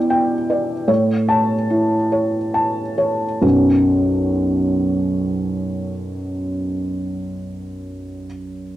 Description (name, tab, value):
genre	neoclassical minimalist piano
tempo	66-83 BPM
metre	3/4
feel	rubato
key	unclear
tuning	A4 = 442 Hz
part	felt-muted upright piano	solo	0.0-8.8 s	B1 to A5	-17 LUFS	equal	cassette tape
room	light reverb, studio reverb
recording	home recording on cassette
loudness	-17 LUFS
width	side -14 dB against mid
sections	0.0-3.4 A section; 3.4-8.5 B section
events	slowing down 0.0-3.4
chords	0.0 Em7/B; 0.9 A; 3.4 Bsus2